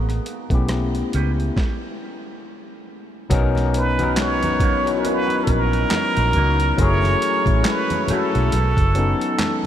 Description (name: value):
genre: R&B, neo-soul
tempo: 69 BPM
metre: 4/4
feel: swing 57% on 16ths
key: B major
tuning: A4 = 443 Hz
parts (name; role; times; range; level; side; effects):
- vintage muted fingered electric bass; bass; 0.0-9.1 s; F#1 to C#2; -21 LUFS; right 1 dB; none
- boom bap sampler-style drum kit; drums; 0.1-9.6 s; handclaps, hi-hat, kick drum, rim click, snare drum; -25 LUFS; right 1 dB; none
- overdriven tine electric piano; accompaniment; 0.5-9.7 s; F#3 to A#4; -23 LUFS; left 4 dB; none
- electric guitar through a small old amp; second line; 1.1-8.3 s; A3 to B4; -35 LUFS; right 5 dB; wah, lush chorus, tape echo
- congas; percussion; 3.3-9.6 s; none; -32 LUFS; right 2 dB; none
- trumpet with plunger mute; melody; 3.8-9.7 s; A4 to C#5; -21 LUFS; right 2 dB; tape echo
room: moderate huge ambient reverb, RT60 7.1 s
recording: dreamy mix soaked in reverb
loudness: -17 LUFS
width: side -10 dB against mid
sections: 0.0-3.3 A section; 3.3-9.7 B section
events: stop 1.6-3.3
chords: 0.0 A9; 3.3 Bmaj7; 6.8 F#m7; 8.5 B7